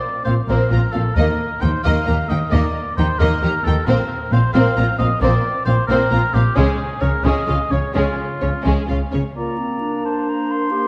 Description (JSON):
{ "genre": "cinematic", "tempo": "88 BPM (dotted quarters)", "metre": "6/8", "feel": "straight", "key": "unclear", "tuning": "A4 = 440 Hz", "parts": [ { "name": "warm oboe", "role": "second line", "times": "0.0-10.9 s", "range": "F4 to F5", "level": "-26 LUFS", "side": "equal", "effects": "none" }, { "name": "warm symphonic violin section", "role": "melody", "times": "0.2-9.2 s", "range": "Ab4 to Bb5", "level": "-30 LUFS", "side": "equal", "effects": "none" }, { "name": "warm symphonic violin section", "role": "second line", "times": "0.3-9.2 s", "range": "Ab3 to G4", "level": "-29 LUFS", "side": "equal", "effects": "none" }, { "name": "warm symphonic viola section", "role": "accompaniment", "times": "0.3-9.2 s", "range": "Bb3 to Db4", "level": "-28 LUFS", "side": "equal", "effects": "none" }, { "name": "rich studio cello section", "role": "bass", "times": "0.3-9.2 s", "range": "Bb2 to Eb3", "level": "-26 LUFS", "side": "equal", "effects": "none" }, { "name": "warm studio double bass section", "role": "bass", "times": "0.3-9.2 s", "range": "Bb1 to Eb2", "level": "-22 LUFS", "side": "equal", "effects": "none" }, { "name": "clear clarinet", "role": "second line", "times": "9.4-10.9 s", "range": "C4 to G4", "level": "-26 LUFS", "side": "equal", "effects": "none" }, { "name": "silver concert flute", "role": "second line", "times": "9.4-10.9 s", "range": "A5 to C6", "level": "-27 LUFS", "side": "equal", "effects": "none" }, { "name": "warm French horn section", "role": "sustained chords", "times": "9.4-10.9 s", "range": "Bb3", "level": "-28 LUFS", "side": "equal", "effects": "none" } ], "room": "moderate concert hall reverb, RT60 2.1 s", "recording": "dark, warm production", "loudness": "-18 LUFS", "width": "mono", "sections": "0.0-9.3 A section; 9.3-10.9 B section", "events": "none", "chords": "0.0 Bbsus2; 1.2 Eb5; 3.9 Bbsus2; 6.6 Db; 9.3 Bbadd9" }